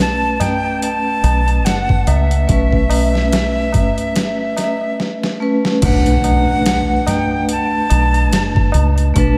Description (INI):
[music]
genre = trip hop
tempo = 72 BPM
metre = 4/4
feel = swing 57% on 16ths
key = B minor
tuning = A4 = 440 Hz
[part]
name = breathy bright jazz flute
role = melody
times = 0.0-9.4 s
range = E5 to A5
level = -22 LUFS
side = equal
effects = tape echo
[part]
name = vibraphone with medium hard mallets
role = accompaniment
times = 0.0-9.4 s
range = A3 to B4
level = -22 LUFS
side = equal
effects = harmonic tremolo, tape echo
[part]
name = deep dub fingered electric bass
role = bass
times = 0.0-9.4 s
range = F#1 to C#2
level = -19 LUFS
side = equal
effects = none
[part]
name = boom bap sampler-style drum kit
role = drums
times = 0.0-9.4 s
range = crash cymbal, hi-hat, kick drum, snare drum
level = -22 LUFS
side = equal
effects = overdrive
[part]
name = tabla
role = percussion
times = 0.4-9.3 s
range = none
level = -28 LUFS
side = equal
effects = none
[part]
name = impact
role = sound effects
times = 5.8-9.2 s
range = none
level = -25 LUFS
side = equal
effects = none
[sound]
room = moderate plate reverb, RT60 2.9 s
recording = dreamy mix soaked in reverb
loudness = -16 LUFS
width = mono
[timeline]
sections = 0.0-5.8 A section; 5.8-9.4 B section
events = drum fill 5.0-5.8; impact 5.8-9.2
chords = 0.0 Aadd9; 5.8 Bm7